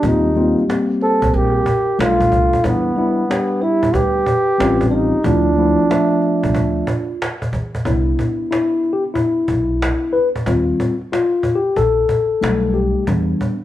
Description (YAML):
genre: hip hop, jazz-hop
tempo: 92 BPM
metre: 4/4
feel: swing 64% on 16ths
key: unclear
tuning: A4 = 440 Hz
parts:
  - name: breathy trombone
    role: melody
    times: 0.0-7.2 s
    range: B3 to A4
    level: -17 LUFS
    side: right 1 dB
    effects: none
  - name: vibraphone with soft mallets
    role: second line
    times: 0.0-7.2 s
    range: D4 to C5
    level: -25 LUFS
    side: right 5 dB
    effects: none
  - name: mellow tine electric piano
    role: accompaniment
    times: 0.0-13.5 s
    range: F3 to E5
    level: -18 LUFS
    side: left 3 dB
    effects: none
  - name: upright bass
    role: bass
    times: 0.0-13.3 s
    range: A1 to E2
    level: -22 LUFS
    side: right 1 dB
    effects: none
  - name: cajon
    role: drums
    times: 0.0-13.6 s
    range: none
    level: -23 LUFS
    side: equal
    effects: none
room: moderate large studio reverb, RT60 1.1 s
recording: band playing live in one room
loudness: -15 LUFS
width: side -13 dB against mid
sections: 0.0-7.9 A section; 7.9-13.6 B section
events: tine electric piano solo 7.9-13.6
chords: 0.0 Eb69; 2.0 B7alt; 2.6 Em7; 4.6 A7alt; 5.2 Dm69; 7.9 Cmaj7 (rootless); 10.5 Eb69; 12.4 Baug7; 13.1 Em7